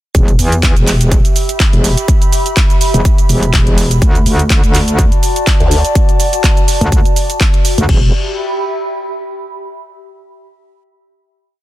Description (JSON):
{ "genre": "bass house", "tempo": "124 BPM", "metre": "4/4", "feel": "swing 55% on 16ths", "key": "E minor", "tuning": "A4 = 440 Hz", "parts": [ { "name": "metallic wobble bass", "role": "bass", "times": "0.1-8.1 s", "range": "E1 to E2", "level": "-12 LUFS", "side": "equal", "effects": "chorus, tube saturation, sidechain pumping" }, { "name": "electronic kick drum", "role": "drums", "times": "0.1-8.0 s", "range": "none", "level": "-12 LUFS", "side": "equal", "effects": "none" }, { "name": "garage drum kit", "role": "drums", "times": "0.1-8.0 s", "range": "crash cymbal, handclaps, hi-hat, shaker", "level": "-18 LUFS", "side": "right 1 dB", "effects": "none" }, { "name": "warbly tape-like pad", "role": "texture", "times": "0.6-9.8 s", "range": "F#4 to B5", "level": "-20 LUFS", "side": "equal", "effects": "chorus, built-in reverb, sidechain pumping" }, { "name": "formant-sweep wobble bass", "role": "bass", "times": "5.6-5.8 s", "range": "D2", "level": "-12 LUFS", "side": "equal", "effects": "chorus, overdrive, sidechain pumping" } ], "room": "little or no reverb", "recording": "dense, heavily limited modern master", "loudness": "-9 LUFS", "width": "side -15 dB against mid", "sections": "0.1-7.9 drop; 7.9-9.8 final chord", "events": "drop 0.1-7.9", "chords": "0.1 Em; 4.0 D; 7.9 Em" }